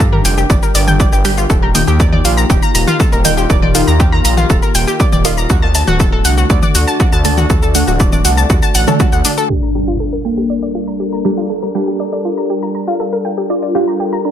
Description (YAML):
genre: melodic techno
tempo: 120 BPM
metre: 4/4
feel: straight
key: G minor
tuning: A4 = 438 Hz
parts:
  - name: sweeping resonant pad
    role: sustained chords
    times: 0.1-14.3 s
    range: D3 to Bb4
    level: -21 LUFS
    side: left 1 dB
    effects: chorus, sidechain pumping
  - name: analog pluck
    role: arpeggios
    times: 0.0-14.3 s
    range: D4 to Bb5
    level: -18 LUFS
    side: equal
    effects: chorus, sidechain pumping, digital delay
  - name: filtered dub chord stab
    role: stabs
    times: 0.0-14.3 s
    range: D3 to G4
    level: -20 LUFS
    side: right 1 dB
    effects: phaser, sidechain pumping, digital delay
  - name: gritty driven synth bass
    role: bass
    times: 0.0-9.2 s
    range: D1 to G2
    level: -15 LUFS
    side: equal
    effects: sidechain pumping
  - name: electronic kick drum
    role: drums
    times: 0.0-9.1 s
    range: none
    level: -13 LUFS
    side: equal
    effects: overdrive, small room ambience
  - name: techno drum kit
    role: drums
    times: 0.0-9.6 s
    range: crash cymbal, hi-hat, shaker, toms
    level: -18 LUFS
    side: left 3 dB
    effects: overdrive, small room ambience
  - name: wide unison lead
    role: melody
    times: 9.5-14.3 s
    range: Bb3 to F4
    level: -19 LUFS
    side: left 1 dB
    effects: sidechain pumping, ping-pong delay
  - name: impact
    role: sound effects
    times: 9.5-11.5 s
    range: none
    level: -20 LUFS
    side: equal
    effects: none
room: light reverb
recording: low-pass filter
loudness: -11 LUFS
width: side -10 dB against mid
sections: 0.0-9.5 A section; 9.5-14.3 B section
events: impact 9.5-11.5; filter sweep on analog synth lead 9.5-14.3; filter sweep 9.5-14.3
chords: 0.0 Gm7; 1.5 Eb; 5.5 D; 9.5 Gm7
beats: 0.00 0.50 1.00 | 1.50 2.00 2.50 3.00 | 3.50 4.00 4.50 5.00 | 5.50 6.00 6.50 7.00 | 7.50 8.00 8.50 9.00 | 9.50 10.00 10.50 11.00 | 11.50 12.00 12.50 13.00 | 13.50 14.00